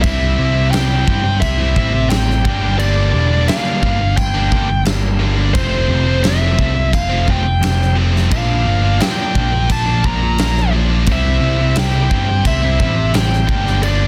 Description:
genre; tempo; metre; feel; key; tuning
quiet-loud alternative rock; 87 BPM; 4/4; straight; unclear; A4 = 439 Hz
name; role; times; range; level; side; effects
bluesy overdriven lead guitar; melody; 0.0-14.1 s; C5 to Bb5; -23 LUFS; equal; distortion
overdriven electric guitar; riff; 0.0-14.1 s; F2 to E4; -25 LUFS; equal; none
tight distorted guitar; riff; 0.0-14.1 s; F2 to E4; -26 LUFS; equal; distortion
overdriven picked electric bass; bass; 0.0-14.1 s; E1 to G2; -19 LUFS; equal; none
huge arena drum kit; drums; 0.0-14.0 s; crash cymbal, kick drum, snare drum; -22 LUFS; equal; none
room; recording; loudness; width
little or no reverb; dense, heavily limited modern master; -15 LUFS; mono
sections
0.0-14.1 A section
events
none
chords
0.0 C; 2.5 Gm; 5.6 Fadd9; 8.3 Bb; 11.1 C; 13.5 Gm

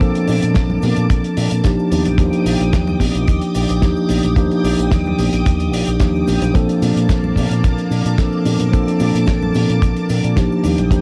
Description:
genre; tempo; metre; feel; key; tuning
nu-disco, nu disco; 110 BPM; 4/4; straight; Bb major; A4 = 442 Hz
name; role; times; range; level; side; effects
mellow tine electric piano; accompaniment; 0.0-11.0 s; F3 to A4; -19 LUFS; equal; sidechain pumping, cassette tape, analog delay
string machine, full ensemble; sustained chords; 0.0-11.0 s; Bb3 to Eb6; -30 LUFS; equal; ensemble chorus, sidechain pumping, cassette tape
fingered electric bass with an envelope filter; bass; 0.0-11.0 s; Bb1 to Bb2; -23 LUFS; equal; tube saturation, sidechain pumping
damped 70s drum kit; drums; 0.0-11.0 s; hi-hat, snare drum; -28 LUFS; equal; small room ambience, cassette tape
kick drum; drums; 0.0-11.0 s; none; -18 LUFS; equal; small room ambience, cassette tape
cabasa and congas; percussion; 0.0-11.0 s; none; -30 LUFS; equal; none
room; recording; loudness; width
light reverb; home recording on cassette; -16 LUFS; mono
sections
0.0-11.0 A section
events
none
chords
0.0 Bbmaj7; 1.9 Ebmaj7; 6.5 Bbmaj7

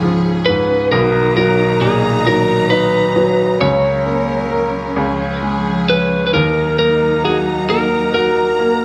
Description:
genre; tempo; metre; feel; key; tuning
six-eight pop ballad; 44 BPM (dotted quarters); 6/8; straight; unclear; A4 = 440 Hz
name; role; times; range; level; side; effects
lightly driven lead guitar; melody; 0.0-8.8 s; G#4 to C#5; -18 LUFS; equal; none
bright baby grand piano; accompaniment; 0.0-8.8 s; B1 to A#4; -19 LUFS; equal; none
warm symphonic string section; sustained chords; 0.0-8.8 s; C#3 to A#5; -24 LUFS; equal; none
room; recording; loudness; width
wet large studio reverb, RT60 1.1 s; band playing live in one room; -15 LUFS; mono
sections
0.0-8.8 A section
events
none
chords
0.0 C#; 0.9 Bmaj7; 3.6 F#/C#; 5.0 C#; 6.3 D#m

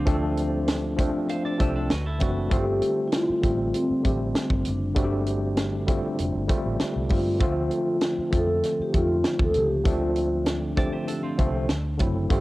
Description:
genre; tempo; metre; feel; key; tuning
lush 1970s-style soul; 98 BPM; 4/4; straight; unclear; A4 = 440 Hz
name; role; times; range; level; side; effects
vibraphone with soft mallets; melody; 0.0-12.4 s; C4 to A4; -27 LUFS; equal; cassette tape
tine electric piano; accompaniment; 0.0-12.4 s; D3 to C5; -28 LUFS; equal; overdrive, fast stereo tremolo, cassette tape
clean electric guitar; riff; 0.0-2.5, 10.8-11.7 s; C4 to F5; -36 LUFS; right 2 dB; cassette tape
vintage muted fingered electric bass; bass; 0.0-12.4 s; F1 to G2; -29 LUFS; equal; none
tight funk drum kit; drums; 0.1-12.4 s; hi-hat, kick drum, snare drum; -26 LUFS; equal; cassette tape
room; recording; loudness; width
light reverb, studio reverb; home recording on cassette; -22 LUFS; side -18 dB against mid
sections
0.0-12.4 A section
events
none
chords
0.0 Dm7; 1.9 D9; 2.5 G9sus4; 7.4 Dm7; 11.7 D9

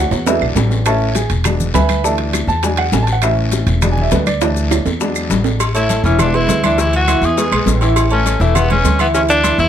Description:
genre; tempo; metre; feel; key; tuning
latin, salsa; 203 BPM; 4/4; straight; A major; A4 = 440 Hz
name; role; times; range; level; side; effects
clear grand piano; accompaniment; 0.0-9.7 s; E3 to B5; -18 LUFS; right 1 dB; none
upright bass; bass; 0.0-9.7 s; E1 to E2; -17 LUFS; equal; none
congas; percussion; 0.1-9.7 s; none; -24 LUFS; left 2 dB; none
guiro; percussion; 0.1-9.7 s; none; -28 LUFS; left 5 dB; none
maracas; percussion; 0.1-9.7 s; none; -29 LUFS; left 9 dB; none
timbales and agogo bells; percussion; 0.1-9.6 s; none; -22 LUFS; right 6 dB; none
bongos and cowbell; percussion; 0.3-9.7 s; none; -24 LUFS; left 7 dB; none
claves; percussion; 0.4-9.6 s; none; -26 LUFS; right 10 dB; none
bright tenor saxophone; melody; 5.8-9.7 s; A3 to G#4; -17 LUFS; equal; none
room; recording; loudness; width
light reverb; close, detailed microphones; -12 LUFS; side -10 dB against mid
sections
0.0-5.6 A section; 5.6-9.7 B section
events
drum fill 0.0-0.9, 4.4-5.6; grand piano solo 0.0-5.6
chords
0.3 E7; 0.9 A; 1.4 E7; 2.0 Dsus2; 2.6 E7; 3.2 A; 3.8 E7; 4.4 Dsus2; 5.0 E7; 5.6 A; 6.2 E7; 6.8 Dsus2; 7.4 E; 8.0 A; 8.6 E7; 9.1 Dsus2

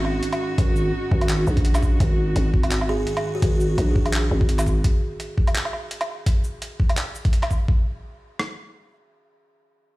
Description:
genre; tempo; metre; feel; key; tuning
half-time drum and bass; 169 BPM; 4/4; swing 56% on 16ths, half-time; unclear; A4 = 440 Hz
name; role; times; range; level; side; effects
warm symphonic cello section; sustained chords; 0.0-4.8 s; G#2 to F#4; -30 LUFS; equal; sidechain pumping
growling 808-style bass; bass; 0.0-4.8 s; G#1 to A#1; -21 LUFS; equal; none
boom bap sampler-style drum kit; drums; 0.0-7.6 s; handclaps, hi-hat, shaker, woodblock; -28 LUFS; right 1 dB; overdrive
boom bap sampler-style drum kit; drums; 0.6-8.5 s; kick drum, rim click; -20 LUFS; equal; overdrive
buzzing kalimba; melody; 2.9-3.4 s; F#4 to G#4; -32 LUFS; right 2 dB; ping-pong delay
room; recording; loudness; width
little or no reverb; played on a big sound system in a bare room, stone room reverb; -19 LUFS; side -19 dB against mid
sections
0.0-7.7 A section; 7.7-10.0 B section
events
drop 0.0-7.7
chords
0.0 G#5; 7.7 N.C.

